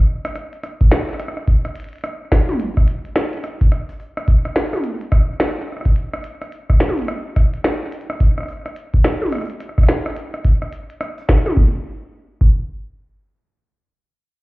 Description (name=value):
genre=IDM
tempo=107 BPM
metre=4/4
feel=swing 62% on 16ths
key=none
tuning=none
part: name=glitchy drum kit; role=drums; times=0.2-11.6 s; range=hi-hat, rim click, snare drum, toms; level=-22 LUFS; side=equal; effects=studio reverb, digital delay
part: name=electronic kick drum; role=drums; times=0.8-12.5 s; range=none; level=-15 LUFS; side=equal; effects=studio reverb
room=light reverb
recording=heard muffled through a wall, club reverb, EQ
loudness=-16 LUFS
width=side -21 dB against mid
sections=0.0-11.6 A section; 11.6-13.8 B section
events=none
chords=none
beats=| 0.35 0.91 1.48 2.04 | 2.60 3.16 3.72 4.28 | 4.84 5.40 5.96 6.52 | 7.08 7.64 8.20 8.76 | 9.32 9.89 10.45 11.01 | 11.57 12.13